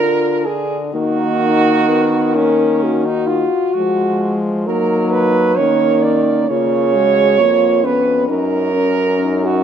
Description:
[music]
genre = classical, lyrical piece for horn quartet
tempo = 63-69 BPM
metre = 4/4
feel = rubato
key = Eb minor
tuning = A4 = 440 Hz
[part]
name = dark French horn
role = melody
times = 0.0-9.6 s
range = Db4 to Bb4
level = -20 LUFS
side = left 8 dB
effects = none
[part]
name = clear French horn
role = second line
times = 0.0-9.6 s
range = Db4 to D5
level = -16 LUFS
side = right 6 dB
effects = none
[part]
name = mellow French horn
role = accompaniment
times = 0.0-9.6 s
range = Ab3 to Eb4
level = -21 LUFS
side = left 3 dB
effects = none
[part]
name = clear French horn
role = bass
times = 0.0-9.6 s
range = F2 to Gb3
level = -20 LUFS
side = equal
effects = none
[sound]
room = light reverb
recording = close, detailed microphones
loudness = -13 LUFS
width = side -8 dB against mid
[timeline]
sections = 0.0-9.6 A section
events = none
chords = 0.0 Bb; 0.9 Ebm; 4.7 Gb; 6.5 Db7; 8.3 Gb

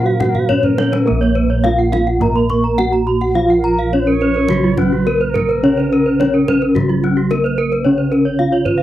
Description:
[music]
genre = Balinese gamelan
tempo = 105 BPM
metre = 4/4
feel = straight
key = Bb pelog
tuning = A4 = 441 Hz
[part]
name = gamelan-type bronze metallophone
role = melody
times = 0.0-8.8 s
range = Gb3 to Bb4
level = -17 LUFS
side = right 1 dB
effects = none
[part]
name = bright reedy bansuri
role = second line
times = 0.0-8.8 s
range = Bb4 to Db5+40c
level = -24 LUFS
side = right 6 dB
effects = none
[part]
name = gamelan-type bronze metallophone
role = accompaniment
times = 0.0-8.8 s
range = Db3 to Bb3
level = -23 LUFS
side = right 2 dB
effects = none
[part]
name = gamelan-type bronze metallophone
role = arpeggios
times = 0.0-8.8 s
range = Db4 to Db6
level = -20 LUFS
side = left 5 dB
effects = none
[part]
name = gamelan-type bossed gongs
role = bass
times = 0.0-8.8 s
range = Bb1 to Bb4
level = -19 LUFS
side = equal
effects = none
[part]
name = gamelan-type bronze metallophone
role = arpeggios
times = 0.1-8.8 s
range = F4 to Cb6+35c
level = -22 LUFS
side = right 5 dB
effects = none
[part]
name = kendang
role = percussion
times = 0.2-8.8 s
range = none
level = -26 LUFS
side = left 2 dB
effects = none
[sound]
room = light reverb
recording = dry, close 1970s-style studio recording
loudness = -13 LUFS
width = side -13 dB against mid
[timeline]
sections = 0.0-8.8 A section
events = drum fill 0.3-1.1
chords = none

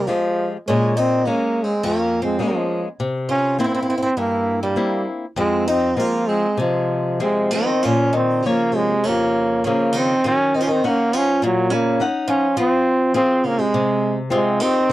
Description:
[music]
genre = fado-style ballad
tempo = 101 BPM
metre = 4/4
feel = rubato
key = F minor, Bb minor from 7.8 s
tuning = A4 = 438 Hz
[part]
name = bright trombone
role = melody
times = 0.0-14.9 s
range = F3 to Db4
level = -19 LUFS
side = right 1 dB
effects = none
[part]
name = picked twelve-string acoustic guitar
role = second line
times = 0.0-14.9 s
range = Bb2 to F4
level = -24 LUFS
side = equal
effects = none
[part]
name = flamenco guitar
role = accompaniment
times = 0.0-14.9 s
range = F2 to Gb5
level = -23 LUFS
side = left 3 dB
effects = none
[sound]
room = light reverb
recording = dry, close 1970s-style studio recording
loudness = -17 LUFS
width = side -15 dB against mid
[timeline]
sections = 0.0-7.8 A section; 7.8-14.9 B section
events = none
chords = 0.0 Fmadd9; 0.7 Bbm7; 3.0 C7; 5.4 Fm; 7.8 Bbm; 10.2 Ebm7; 12.6 Fm

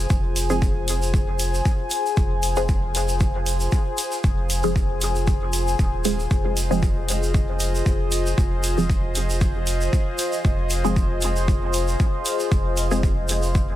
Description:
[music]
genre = dub techno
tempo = 116 BPM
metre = 4/4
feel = swing 54% on 16ths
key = F minor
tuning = A4 = 440 Hz
[part]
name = warbly tape-like pad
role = sustained chords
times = 0.0-13.8 s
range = F4 to Ab5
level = -28 LUFS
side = left 1 dB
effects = chorus, built-in reverb, phaser, sidechain pumping
[part]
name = filtered dub chord stab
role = stabs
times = 0.0-13.8 s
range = F3 to Ab4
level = -29 LUFS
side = equal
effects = phaser, sidechain pumping, dub echo
[part]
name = pure sine sub bass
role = bass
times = 0.0-13.8 s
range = Eb1 to F1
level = -25 LUFS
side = equal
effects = sidechain pumping
[part]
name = bubbling stepped-filter texture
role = texture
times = 0.0-13.8 s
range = Ab4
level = -33 LUFS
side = left 7 dB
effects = chorus, built-in reverb, sidechain pumping
[part]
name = electronic kick drum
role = drums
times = 0.1-13.7 s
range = none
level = -21 LUFS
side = equal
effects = none
[part]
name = tube shaker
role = percussion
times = 0.1-13.7 s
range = none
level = -31 LUFS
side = right 2 dB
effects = none
[part]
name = electronic hi-hat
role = drums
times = 0.4-13.4 s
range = none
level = -28 LUFS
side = left 1 dB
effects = none
[sound]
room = digital ambience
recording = none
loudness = -19 LUFS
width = side -13 dB against mid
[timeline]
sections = 0.0-13.8 A section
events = filter sweep on synth stab 0.0-13.8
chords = 0.0 Fm

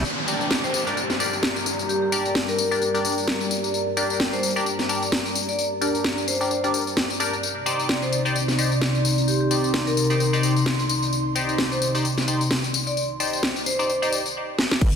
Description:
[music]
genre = bass house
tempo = 130 BPM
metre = 4/4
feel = swing 57% on 16ths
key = G minor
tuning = A4 = 438 Hz
[part]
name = dark analog pad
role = sustained chords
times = 0.9-15.0 s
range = C3 to D5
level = -27 LUFS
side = left 1 dB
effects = chorus, phaser, sidechain pumping
[part]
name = metallic wobble bass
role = bass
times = 0.0, 14.8-15.0 s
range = G1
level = -25 LUFS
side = equal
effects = chorus, tube saturation, sidechain pumping
[part]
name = house drum kit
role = drums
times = 0.0-14.9 s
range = crash cymbal, hi-hat, snare drum, tambourine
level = -25 LUFS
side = left 2 dB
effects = none
[part]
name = downlifter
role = sound effects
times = 0.0-3.7 s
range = none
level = -30 LUFS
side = equal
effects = none
[part]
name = warbly tape-like pad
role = texture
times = 0.0-14.4 s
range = Eb4 to C6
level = -30 LUFS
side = equal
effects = chorus, built-in reverb, sidechain pumping
[part]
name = band-passed chord stab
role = stabs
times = 0.3-14.2 s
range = D4 to D5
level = -27 LUFS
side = left 1 dB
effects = phaser, cassette tape, sidechain pumping, digital delay
[part]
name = vibraphone with medium hard mallets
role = melody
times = 0.6-14.1 s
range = G4 to D5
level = -28 LUFS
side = left 1 dB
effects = digital delay
[part]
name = electronic kick drum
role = drums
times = 14.8-14.9 s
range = none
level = -18 LUFS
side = equal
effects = none
[sound]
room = moderate lush hall reverb, RT60 1.9 s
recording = dense, heavily limited modern master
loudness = -20 LUFS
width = side -7 dB against mid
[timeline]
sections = 0.0-14.8 A section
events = drum fill 14.6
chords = 0.0 Gm; 7.4 Cmadd9

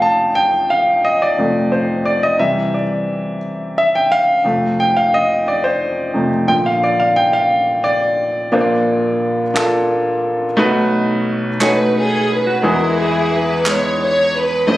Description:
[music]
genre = slow gospel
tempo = 59 BPM (dotted quarters)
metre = 6/8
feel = straight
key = Bb major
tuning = A4 = 441 Hz
[part]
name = clear baby grand piano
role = accompaniment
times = 0.0-14.8 s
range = A1 to A5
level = -14 LUFS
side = equal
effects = none
[part]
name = group handclap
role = percussion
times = 9.6-14.0 s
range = none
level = -22 LUFS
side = right 2 dB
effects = none
[part]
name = warm studio string section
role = melody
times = 11.6-14.8 s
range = E4 to D#5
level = -17 LUFS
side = equal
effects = none
[part]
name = clean electric guitar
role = second line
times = 11.6-12.8 s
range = F#4 to Db5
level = -22 LUFS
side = right 3 dB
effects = none
[sound]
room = moderate concert hall reverb, RT60 2.4 s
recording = recorded on a phone in the room, studio reverb, compression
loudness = -14 LUFS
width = side -16 dB against mid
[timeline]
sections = 0.0-8.5 A section; 8.5-12.6 B section; 12.6-14.8 C section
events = grand piano solo 0.0-8.5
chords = 0.0 F; 2.4 C; 4.4 F; 6.5 Bb; 10.6 B7; 12.6 E

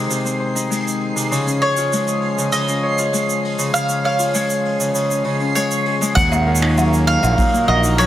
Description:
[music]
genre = folktronica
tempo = 99 BPM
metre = 4/4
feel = straight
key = Db major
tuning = A4 = 441 Hz
[part]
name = mandolin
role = melody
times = 0.0-8.1 s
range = C5 to Gb5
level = -21 LUFS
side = right 1 dB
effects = tape echo
[part]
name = hand-pumped harmonium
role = sustained chords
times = 0.0-8.1 s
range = Eb3 to Bb4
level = -25 LUFS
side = equal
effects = none
[part]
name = Celtic harp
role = arpeggios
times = 0.0-8.1 s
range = Bb2 to Db5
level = -20 LUFS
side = left 2 dB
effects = vintage 12-bit sampler grit, tape echo
[part]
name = backwards swelling texture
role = texture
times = 0.0-6.2 s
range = C7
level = -28 LUFS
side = right 4 dB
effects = built-in reverb
[part]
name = vintage brush drum kit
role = drums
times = 0.1-8.1 s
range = finger snaps, hi-hat, shaker, woodblock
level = -25 LUFS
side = right 2 dB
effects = none
[part]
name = fuzz fingered electric bass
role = bass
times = 6.2-8.1 s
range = Bb1 to Eb2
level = -17 LUFS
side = equal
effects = overdrive
[part]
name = kick drum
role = drums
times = 6.2-7.5 s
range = none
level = -20 LUFS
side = right 1 dB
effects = none
[sound]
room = light reverb, studio reverb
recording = none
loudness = -16 LUFS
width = side -12 dB against mid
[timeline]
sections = 0.0-6.2 A section; 6.2-8.1 B section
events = none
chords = 0.0 Ab; 1.3 Db; 6.2 Ebm

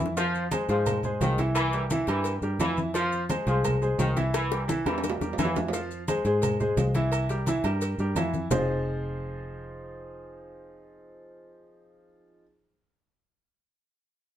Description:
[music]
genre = latin, salsa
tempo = 173 BPM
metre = 4/4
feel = straight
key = F minor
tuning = A4 = 440 Hz
[part]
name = clear grand piano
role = accompaniment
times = 0.0-12.4 s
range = E3 to F5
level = -30 LUFS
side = equal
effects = none
[part]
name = fingered electric bass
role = bass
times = 0.0-12.4 s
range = F1 to Ab2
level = -30 LUFS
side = equal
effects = none
[part]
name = congas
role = percussion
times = 0.0-8.6 s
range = none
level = -33 LUFS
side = left 1 dB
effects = none
[part]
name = maracas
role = percussion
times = 0.0-8.6 s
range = none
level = -43 LUFS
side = left 5 dB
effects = none
[part]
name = bongos and cowbell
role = percussion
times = 0.1-8.6 s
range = none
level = -36 LUFS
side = left 4 dB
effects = none
[part]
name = brilliant trombone section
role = second line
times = 0.2-5.6 s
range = Eb3 to F3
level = -30 LUFS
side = left 1 dB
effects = none
[part]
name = agogo bells and timbales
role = percussion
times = 0.2-8.6 s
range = none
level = -35 LUFS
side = right 5 dB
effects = none
[sound]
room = moderate studio ambience, RT60 0.5 s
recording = heard from further back in the room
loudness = -24 LUFS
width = side -11 dB against mid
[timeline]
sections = 0.0-5.7 A section; 5.7-8.5 B section; 8.5-11.3 C section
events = drum fill 0.0, 4.3-5.7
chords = 0.2 Fm; 1.6 C7; 3.0 Fm; 4.3 C7; 5.7 Fm; 7.1 C7; 8.5 Fm7

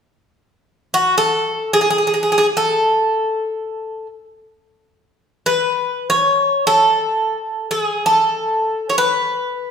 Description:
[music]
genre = greek folk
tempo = free time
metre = none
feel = none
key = A major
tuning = A4 = 440 Hz
[part]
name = Greek bouzouki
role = melody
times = 0.9-9.7 s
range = F#4 to C#5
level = -15 LUFS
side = equal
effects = none
[sound]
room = wet recital hall reverb, RT60 1.4 s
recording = recorded in a church or concert hall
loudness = -15 LUFS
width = side -7 dB against mid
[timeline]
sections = 0.3-9.7 A section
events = none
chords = none

